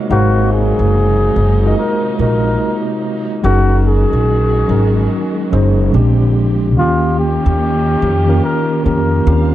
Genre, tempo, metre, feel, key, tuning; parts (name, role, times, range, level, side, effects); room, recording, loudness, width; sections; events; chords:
hip hop; 72 BPM; 4/4; swing 65% on 16ths; A4 = 444 Hz
mellow tine electric piano; accompaniment; 0.0-9.5 s; Bb2 to F5; -16 LUFS; equal; medium stereo tremolo, cassette tape, low-pass filter
warm studio string section; sustained chords; 0.0-9.5 s; C3 to F5; -25 LUFS; right 2 dB; low-pass filter
breathy flugelhorn; melody; 0.1-9.5 s; F4 to Bb4; -18 LUFS; left 1 dB; low-pass filter
upright bass; bass; 0.1-9.5 s; Gb1 to F2; -14 LUFS; equal
light reverb; dark, warm production; -12 LUFS; side -13 dB against mid
0.0-9.5 A section
0.0 Ab13; 3.4 Gb69; 5.9 Bb13; 6.8 Eb7